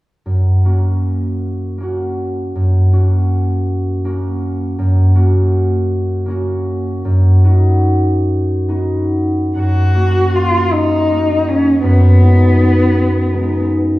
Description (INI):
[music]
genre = classical, romantic duo for cello and harp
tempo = 53 BPM (dotted quarters)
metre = 6/8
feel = rubato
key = F# major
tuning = A4 = 444 Hz
[part]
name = concert harp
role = accompaniment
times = 0.3-14.0 s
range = F#2 to F#4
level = -13 LUFS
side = equal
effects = none
[part]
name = dark cello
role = melody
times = 9.6-13.7 s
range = B3 to F#4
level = -15 LUFS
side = left 1 dB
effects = none
[sound]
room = wet recital hall reverb, RT60 1.6 s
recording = heard from further back in the room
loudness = -12 LUFS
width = side -18 dB against mid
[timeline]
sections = 0.3-9.6 A section; 9.6-14.0 B section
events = none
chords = 0.3 F#; 7.0 B/F#; 9.6 F#; 11.8 G#m7/F#